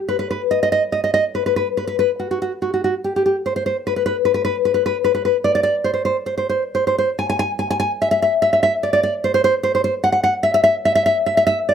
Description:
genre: romantic piece for solo classical guitar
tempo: 61-76 BPM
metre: 4/4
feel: rubato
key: unclear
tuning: A4 = 440 Hz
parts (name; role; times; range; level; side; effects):
- nylon-string guitar; solo; 0.1-11.7 s; F#4 to G#5; -16 LUFS; equal; none
room: light reverb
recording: close, detailed microphones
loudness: -16 LUFS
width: side -8 dB against mid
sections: 0.0-11.7 A section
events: none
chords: none

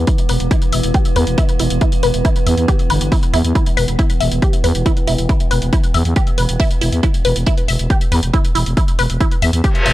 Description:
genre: driving peak-time techno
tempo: 138 BPM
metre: 4/4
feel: straight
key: E minor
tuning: A4 = 440 Hz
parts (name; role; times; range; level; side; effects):
- growling FM bass; bass; 0.0-9.9 s; E1 to E2; -16 LUFS; equal; sidechain pumping
- metallic inharmonic drone; drone; 0.0-9.9 s; E3 to B3; -25 LUFS; right 2 dB; chorus, built-in reverb, sidechain pumping
- resonant blip pluck; riff; 0.1-9.9 s; E4 to E5; -22 LUFS; equal; phaser, sidechain pumping, tape echo
- electronic hi-hat; drums; 0.1-9.9 s; none; -26 LUFS; left 1 dB; overdrive, sidechain pumping on hats, sidechain pumping on cymbals
- electronic kick drum; drums; 0.1-9.7 s; none; -15 LUFS; equal; overdrive
- reverse cymbal; sound effects; 9.7-9.9 s; none; -15 LUFS; left 1 dB; none
room: digital ambience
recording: dry, gritty hardware recording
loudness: -13 LUFS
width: side -15 dB against mid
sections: 0.0-9.9 A section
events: filter sweep on synth arpeggio sound 0.0-9.9; reverse cymbal 9.7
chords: 0.0 E5

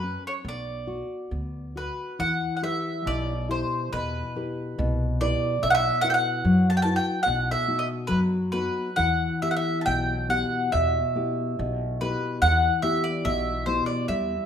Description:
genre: fado-style ballad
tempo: 67-74 BPM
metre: 2/4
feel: rubato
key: E minor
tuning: A4 = 438 Hz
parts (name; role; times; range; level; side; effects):
- mandolin; melody; 0.0-14.5 s; B4 to A5; -25 LUFS; equal; none
- nylon-string guitar; accompaniment; 0.0-14.5 s; B2 to B4; -27 LUFS; left 2 dB; none
- upright bass; bass; 0.0-14.4 s; B1 to F#2; -30 LUFS; right 1 dB; none
room: moderate recital hall reverb, RT60 1.4 s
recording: minimal, uncompressed stereo recording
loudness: -23 LUFS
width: side -8 dB against mid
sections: 0.0-2.2 A section; 2.2-14.5 B section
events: none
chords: 0.4 Bm; 2.2 Em; 5.6 Bsus4; 7.3 B; 9.0 Em

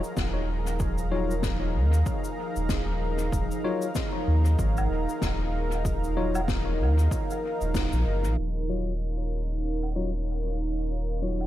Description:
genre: ambient dub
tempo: 95 BPM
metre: 4/4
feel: swing 58% on 16ths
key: unclear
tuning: A4 = 441 Hz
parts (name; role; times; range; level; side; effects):
- warm analog pad; sustained chords; 0.0-11.5 s; Eb4 to Bb5; -32 LUFS; right 1 dB; chorus
- cabasa, snare drum and woodblock; drums; 0.0-11.5 s; none; -36 LUFS; left 4 dB; dub echo
- wind-like tuned noise texture; texture; 0.0-11.5 s; F3 to Db5; -38 LUFS; left 1 dB; built-in reverb
- warm sub bass; bass; 0.2-11.5 s; Eb1 to Eb2; -26 LUFS; equal; none
- electronic kick drum; drums; 0.2-7.9 s; none; -31 LUFS; equal; overdrive
- tine electric piano; stabs; 1.1-11.4 s; Gb3 to Db5; -35 LUFS; left 5 dB; dub echo
room: studio ambience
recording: echo-heavy mix, low-pass filter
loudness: -25 LUFS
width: side -14 dB against mid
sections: 0.0-8.4 A section; 8.4-11.5 B section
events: band accent 7.7-8.1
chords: 0.0 Ebsus2; 8.4 Ebm9

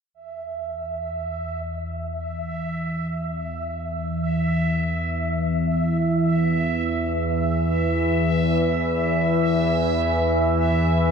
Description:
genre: dark ambient drone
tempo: free time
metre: none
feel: none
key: unclear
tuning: A4 = 441 Hz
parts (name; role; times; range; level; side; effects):
- analog drone; drone; 0.9-11.1 s; E2 to E3; -22 LUFS; left 1 dB; chorus
- bubbling stepped-filter texture; texture; 0.1-11.1 s; E5; -27 LUFS; right 3 dB; chorus, built-in reverb
room: moderate spring reverb, RT60 2.3 s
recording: none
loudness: -21 LUFS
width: side -6 dB against mid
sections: 0.1-11.1 A section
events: none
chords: none

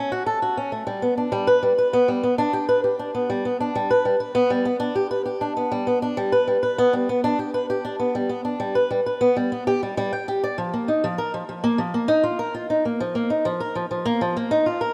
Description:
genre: folktronica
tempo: 99 BPM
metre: 4/4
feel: straight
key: unclear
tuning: A4 = 440 Hz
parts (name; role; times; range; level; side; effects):
- fingerpicked swing-style acoustic guitar; solo; 0.0-14.9 s; F3 to G5; -23 LUFS; equal; none
room: moderate lush hall reverb, RT60 3.1 s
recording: rough home demo mix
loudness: -23 LUFS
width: mono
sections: 0.0-14.9 A section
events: none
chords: none

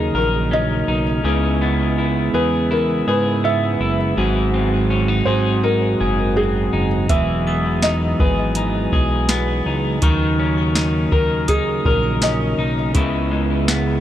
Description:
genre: dream pop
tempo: 82 BPM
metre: 4/4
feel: straight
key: C# dorian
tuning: A4 = 441 Hz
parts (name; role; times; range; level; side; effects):
- felt-muted upright piano; melody; 0.0-12.7 s; G#4 to E5; -24 LUFS; equal; digital delay
- mellow tonewheel organ; sustained chords; 0.0-14.0 s; C#3 to F#4; -22 LUFS; right 2 dB; slow rotary speaker
- electric guitar at the edge of break-up; arpeggios; 0.0-14.0 s; G#2 to A#4; -22 LUFS; left 2 dB; wide subtle chorus, digital delay
- fat analog bass; bass; 0.0-14.0 s; E1 to G#2; -22 LUFS; equal; none
- soft vintage rhythm box; drums; 7.1-13.9 s; hi-hat, kick drum, snare drum; -19 LUFS; equal; none
- glockenspiel with brass mallets; texture; 7.5-13.3 s; C#6 to D#6; -33 LUFS; right 1 dB; digital delay
room: light reverb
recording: none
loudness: -16 LUFS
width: side -11 dB against mid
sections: 0.0-14.0 A section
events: none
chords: 0.0 D#m7; 1.2 C#m7; 4.2 G#7; 7.1 Emaj7; 10.0 D#m7; 13.0 C#m7

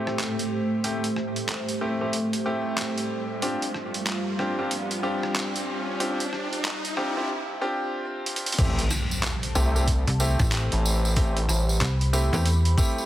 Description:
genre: glitch hop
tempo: 93 BPM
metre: 4/4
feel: swing 62% on 16ths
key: A minor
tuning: A4 = 440 Hz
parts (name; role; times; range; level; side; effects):
- dark analog pad; sustained chords; 0.0-13.1 s; G3 to B5; -34 LUFS; right 1 dB; chorus, sidechain pumping
- bright grand piano; stabs; 0.0-13.1 s; A3 to G4; -30 LUFS; equal; sidechain pumping, low-pass filter, digital delay
- riser and impact; sound effects; 0.8-11.2 s; none; -34 LUFS; equal; none
- granular cloud pad; texture; 0.0-7.3 s; A3 to E5; -33 LUFS; right 1 dB; built-in reverb, sidechain pumping
- boom bap sampler-style drum kit; drums; 0.1-12.8 s; crash cymbal, handclaps, hi-hat, rim click; -31 LUFS; right 1 dB; overdrive, small room ambience
- gritty driven synth bass; bass; 8.6-11.8 s; A1 to C2; -24 LUFS; equal; overdrive
- electronic kick drum; drums; 8.6-12.9 s; none; -23 LUFS; equal; small room ambience
- tambourine; percussion; 8.6-13.1 s; none; -33 LUFS; right 1 dB; none
- slap-like FM bass; bass; 10.1-12.8 s; A1 to E2; -22 LUFS; equal; none
room: moderate lush hall reverb, RT60 2.8 s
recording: heavily compressed radio sound, high-pass filter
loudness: -23 LUFS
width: side -13 dB against mid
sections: 0.0-8.6 A section; 8.6-13.1 B section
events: build-up 0.0-8.6; filter sweep 0.0-8.6; riser 0.8-7.3; drum fill 8.3-8.6; drop 8.6-13.1; impact 8.6-11.2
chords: 0.0 Am7; 3.4 G7sus4; 8.6 Am7

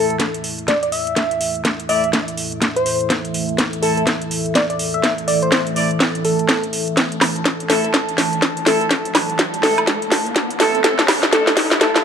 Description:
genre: bass house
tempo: 124 BPM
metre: 4/4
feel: swing 61% on 16ths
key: unclear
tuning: A4 = 440 Hz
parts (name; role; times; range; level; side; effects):
- soft struck synth lead; melody; 0.0-12.0 s; A4 to E5; -21 LUFS; left 1 dB; chorus, digital delay
- dark analog pad; sustained chords; 0.0-12.0 s; E3 to A5; -25 LUFS; right 1 dB; chorus, phaser, sidechain pumping
- dark horn section; stabs; 0.0-12.0 s; A3 to D5; -25 LUFS; right 1 dB; sidechain pumping, low-pass filter, digital delay
- garage drum kit; drums; 0.1-12.0 s; hi-hat, snare drum, woodblock; -18 LUFS; equal; none
- electronic kick drum; drums; 0.2-11.9 s; none; -27 LUFS; equal; none
- riser; sound effects; 8.6-12.0 s; none; -28 LUFS; equal; none
room: moderate plate reverb, RT60 1.9 s, studio reverb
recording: high-pass filter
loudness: -15 LUFS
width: side -7 dB against mid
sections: 0.0-12.0 A section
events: build-up 0.0-12.0; drum fill 0.0-12.0; riser 8.6-12.0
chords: 0.0 A5

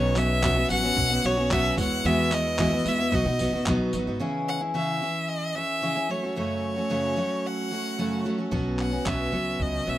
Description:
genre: acoustic pop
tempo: 111 BPM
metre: 4/4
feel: straight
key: C# minor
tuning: A4 = 440 Hz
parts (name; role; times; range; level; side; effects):
- clear violin; melody; 0.0-10.0 s; C#5 to F#5; -27 LUFS; equal; tape echo
- picked steel-string acoustic guitar; accompaniment; 0.0-10.0 s; F#2 to G#4; -26 LUFS; equal; none
- upright bass; bass; 0.0-4.2, 8.5-10.0 s; G#1 to B2; -30 LUFS; equal; none
- dusty soul sampler-style drum kit; drums; 0.2-4.1, 8.5-9.7 s; handclaps, kick drum, tambourine; -31 LUFS; equal; none
room: small room ambience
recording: rough home demo mix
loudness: -23 LUFS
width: side -14 dB against mid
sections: 0.0-4.2 A section; 4.2-10.0 B section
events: none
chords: 0.0 Bsus2; 1.8 Eadd9; 3.1 B; 4.2 C#m; 6.1 F#m; 8.5 Bsus2

